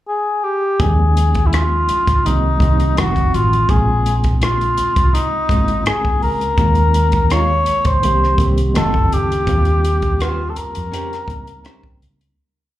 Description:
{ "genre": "R&B, neo-soul", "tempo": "83 BPM", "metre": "4/4", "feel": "straight", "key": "unclear", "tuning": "A4 = 441 Hz", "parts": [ { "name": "dark cor anglais", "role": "melody", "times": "0.1-12.0 s", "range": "Eb4 to Db5", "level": "-18 LUFS", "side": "left 1 dB", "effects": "slapback echo" }, { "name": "reed electric piano", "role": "accompaniment", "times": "0.8-12.4 s", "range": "Db3 to G4", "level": "-24 LUFS", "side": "equal", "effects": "fast tremolo" }, { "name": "vintage muted fingered electric bass", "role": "bass", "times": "0.8-12.3 s", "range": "F1 to F2", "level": "-17 LUFS", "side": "equal", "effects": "none" }, { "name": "compact cocktail drum kit", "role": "drums", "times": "0.8-12.4 s", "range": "hi-hat, kick drum, rim click", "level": "-20 LUFS", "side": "equal", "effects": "none" }, { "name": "nylon-string guitar", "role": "second line", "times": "7.3-11.8 s", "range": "Ab3 to C5", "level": "-26 LUFS", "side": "right 3 dB", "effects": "slapback echo" } ], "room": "studio ambience", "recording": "live gig heard through the venue's PA, club reverb", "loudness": "-14 LUFS", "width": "side -14 dB against mid", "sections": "0.0-0.8 pickup bar; 0.8-12.4 verse", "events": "fade-out 9.5-12.4", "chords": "0.0 N.C.; 0.8 Eb9sus4; 2.2 Cm7; 3.0 F7b9; 3.7 Bbm7; 6.6 Eb9sus4; 8.0 Cm7; 8.7 F7b9; 9.5 Eb13" }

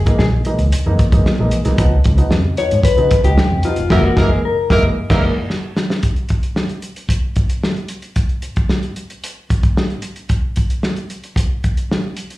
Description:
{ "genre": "funk", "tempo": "113 BPM", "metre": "4/4", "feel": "straight", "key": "unclear", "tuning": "A4 = 442 Hz", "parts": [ { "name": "vintage muted fingered electric bass", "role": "bass", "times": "0.0-5.3 s", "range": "F1 to Db3", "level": "-16 LUFS", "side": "equal", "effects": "none" }, { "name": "dark upright piano", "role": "stabs", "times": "0.1-5.3 s", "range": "Db3 to Eb4", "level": "-20 LUFS", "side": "right 2 dB", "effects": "plate reverb, slapback echo" }, { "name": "warm soul drum kit", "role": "drums", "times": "0.1-12.4 s", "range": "crash cymbal, hi-hat, kick drum, snare drum", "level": "-17 LUFS", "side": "equal", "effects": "none" }, { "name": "mellow electric guitar", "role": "accompaniment", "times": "0.2-4.7 s", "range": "F4 to Db5", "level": "-18 LUFS", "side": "left 5 dB", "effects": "plate reverb, slapback echo" }, { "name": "warm horn section", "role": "second line", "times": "3.9-5.2 s", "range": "Bb3 to Bb4", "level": "-20 LUFS", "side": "right 1 dB", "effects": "plate reverb, slapback echo" } ], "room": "light reverb", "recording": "live gig heard through the venue's PA, club reverb, lossy compression artefacts", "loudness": "-14 LUFS", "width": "side -17 dB against mid", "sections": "0.0-6.0 A section; 6.0-12.4 B section", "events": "clean electric guitar solo 0.0-6.0; band accent 3.9-6.0; drum fill 5.5-6.0", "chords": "0.0 Gb13; 1.8 Db9; 3.9 Gb13; 6.0 N.C." }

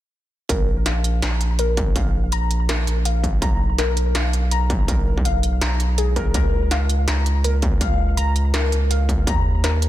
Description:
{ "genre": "half-time drum and bass", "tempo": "164 BPM", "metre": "4/4", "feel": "swing 60% on 16ths, half-time", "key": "Bb phrygian", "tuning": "A4 = 440 Hz", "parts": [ { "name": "warbly dusty pluck", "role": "arpeggios", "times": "0.5-9.9 s", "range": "Ab4 to Bb5", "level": "-26 LUFS", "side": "left 3 dB", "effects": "chorus, tape echo" }, { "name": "saturated sub bass", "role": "bass", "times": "0.5-9.9 s", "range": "Bb1 to Eb2", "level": "-20 LUFS", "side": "equal", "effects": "none" }, { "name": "electronic kick drum", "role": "drums", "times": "0.5-9.4 s", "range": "none", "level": "-22 LUFS", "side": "equal", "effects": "distortion, small room ambience" }, { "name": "industrial drum kit", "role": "drums", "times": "0.5-9.9 s", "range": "hi-hat, snare drum", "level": "-26 LUFS", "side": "right 1 dB", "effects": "small room ambience" } ], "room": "little or no reverb", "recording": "dense, heavily limited modern master", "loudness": "-18 LUFS", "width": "side -14 dB against mid", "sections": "0.5-9.9 A section", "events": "none", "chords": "0.5 Bb5; 3.4 Abm69/Cb; 6.3 Db6; 9.3 Eb5" }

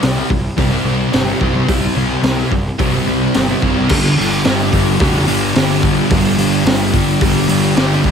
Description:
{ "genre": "rock, shoegaze and dream pop", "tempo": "108 BPM", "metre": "4/4", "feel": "straight", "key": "unclear", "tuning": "A4 = 439 Hz", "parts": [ { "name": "fuzz guitar", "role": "riff", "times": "0.0-8.1 s", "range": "G2 to C4", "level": "-15 LUFS", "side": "equal", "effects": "distortion, lush chorus" }, { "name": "fuzz picked electric bass", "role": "bass", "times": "0.0-8.1 s", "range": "F1 to C2", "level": "-20 LUFS", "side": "equal", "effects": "overdrive" }, { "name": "raw garage drum kit", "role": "drums", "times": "0.0-8.1 s", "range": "crash cymbal, hi-hat, kick drum, snare drum", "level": "-17 LUFS", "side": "equal", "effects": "none" } ], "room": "light reverb", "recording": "none", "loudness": "-12 LUFS", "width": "side -7 dB against mid", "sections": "0.0-3.9 A section; 3.9-8.1 B section", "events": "none", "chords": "0.0 C5; 3.9 G5" }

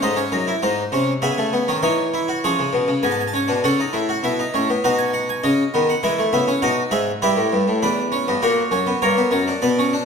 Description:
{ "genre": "classical, baroque-style 4-part fugue for harpsichord", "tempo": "100 BPM", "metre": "4/4", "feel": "straight", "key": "unclear", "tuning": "A4 = 440 Hz", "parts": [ { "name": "harpsichord", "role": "solo", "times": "0.0-10.1 s", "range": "E2 to A5", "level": "-17 LUFS", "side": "equal", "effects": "none" } ], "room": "wet recital hall reverb, RT60 1.5 s", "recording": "minimal, uncompressed stereo recording", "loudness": "-17 LUFS", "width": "side -6 dB against mid", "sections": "0.0-2.4 A section; 2.4-10.1 B section", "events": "none", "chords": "0.0 G#7; 1.2 C#m; 2.4 C#7; 3.6 F#m; 4.8 B; 6.0 E; 7.2 Em/G; 8.4 F#" }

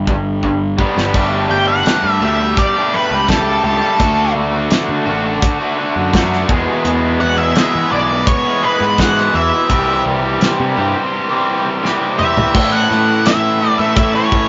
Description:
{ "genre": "classic rock", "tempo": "84 BPM", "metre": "4/4", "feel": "straight", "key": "unclear", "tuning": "A4 = 440 Hz", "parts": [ { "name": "biting overdriven guitar", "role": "riff", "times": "0.0-14.5 s", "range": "E2 to G#4", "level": "-21 LUFS", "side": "equal", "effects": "none" }, { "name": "raw garage guitar", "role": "riff", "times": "0.0-14.5 s", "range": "E2 to G#4", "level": "-22 LUFS", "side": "equal", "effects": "overdrive, spring reverb" }, { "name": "fuzz picked electric bass", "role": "bass", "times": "0.0-14.5 s", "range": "G1 to E3", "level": "-22 LUFS", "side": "equal", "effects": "overdrive" }, { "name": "damped 70s drum kit", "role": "drums", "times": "0.1-14.5 s", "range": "crash cymbal, hi-hat, kick drum, snare drum, toms", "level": "-19 LUFS", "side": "equal", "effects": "none" }, { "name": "octave-fuzz lead guitar", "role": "melody", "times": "1.5-14.5 s", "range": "A4 to G5", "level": "-18 LUFS", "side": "equal", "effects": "distortion" } ], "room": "moderate studio ambience, RT60 0.5 s", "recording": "rough rehearsal-room recording, nothing above 7.6 kHz", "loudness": "-15 LUFS", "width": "mono", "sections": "0.0-1.2 A section; 1.2-12.6 B section; 12.6-14.5 C section", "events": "drum fill 0.4-1.2, 11.8-12.6", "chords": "0.0 G; 1.2 Gsus2; 4.0 D; 6.5 E; 9.7 C; 12.6 A" }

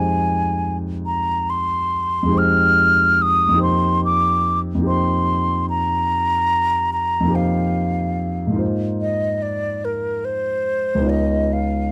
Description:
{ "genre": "classical, impressionist duo for flute and grand piano", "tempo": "48 BPM (dotted quarters)", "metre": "12/8", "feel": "rubato", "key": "Eb major", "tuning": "A4 = 440 Hz", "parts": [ { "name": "mellow hollow silver concert flute", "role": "melody", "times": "0.0-11.9 s", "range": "Bb4 to F6", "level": "-21 LUFS", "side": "equal", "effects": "none" }, { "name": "dark concert grand piano", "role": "accompaniment", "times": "0.0-11.9 s", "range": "Db2 to Db5", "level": "-23 LUFS", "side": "equal", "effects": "none" } ], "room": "light reverb", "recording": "dark, warm production", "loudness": "-19 LUFS", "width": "mono", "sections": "0.0-11.9 A section", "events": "none", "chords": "0.0 Fm9; 8.6 Ab69; 11.1 Db9" }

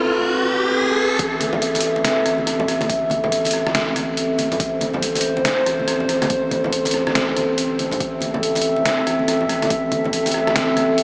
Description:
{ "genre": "deep dubstep", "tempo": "141 BPM", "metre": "4/4", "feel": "swing 62% on 16ths, half-time", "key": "A minor", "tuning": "A4 = 440 Hz", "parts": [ { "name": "dark analog pad", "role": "sustained chords", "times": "0.0-11.0 s", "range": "C4 to E5", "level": "-19 LUFS", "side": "equal", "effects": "chorus" }, { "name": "riser", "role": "sound effects", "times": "0.0-1.2 s", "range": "none", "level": "-23 LUFS", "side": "equal", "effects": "none" }, { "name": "saturated sub bass", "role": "bass", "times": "1.2-11.0 s", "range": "A1", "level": "-30 LUFS", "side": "equal", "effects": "none" }, { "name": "electronic kick drum", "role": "drums", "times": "1.2-10.0 s", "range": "none", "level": "-30 LUFS", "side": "equal", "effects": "overdrive" }, { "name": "trip hop sampler-style drum kit", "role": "drums", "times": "1.2-11.0 s", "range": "hi-hat, rim click, snare drum", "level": "-23 LUFS", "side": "equal", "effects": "none" }, { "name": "congas", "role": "percussion", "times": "1.4-10.9 s", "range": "none", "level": "-28 LUFS", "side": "equal", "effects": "dub echo" } ], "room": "wet huge ambient reverb, RT60 9.0 s", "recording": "dreamy mix soaked in reverb, small speaker sound", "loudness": "-17 LUFS", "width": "side -33 dB against mid", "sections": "0.0-1.2 A section; 1.2-11.0 B section", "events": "break 0.0-1.2; build-up 0.0-1.2; riser 0.0-1.2; drop 1.2-11.0", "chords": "0.0 Am" }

